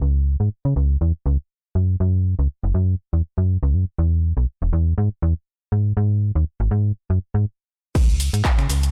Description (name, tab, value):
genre	filtered disco house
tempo	121 BPM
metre	4/4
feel	swing 56% on 16ths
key	unclear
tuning	A4 = 439 Hz
part	slap-like FM bass	bass	0.0-8.9 s	E1 to C#3	-20 LUFS	equal	sidechain pumping, low-pass filter
part	electronic kick drum	drums	8.0-8.6 s	none	-20 LUFS	equal	overdrive
part	house drum kit	drums	8.0-8.9 s	crash cymbal, finger snaps, handclaps, hi-hat, shaker	-29 LUFS	equal	overdrive, sidechain pumping on hats, sidechain pumping on cymbals, sidechain pumping on perc
room	little or no reverb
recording	none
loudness	-21 LUFS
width	mono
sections	0.0-8.0 A section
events	filter sweep on FM bass 0.0-8.0; stop 7.5-8.0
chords	none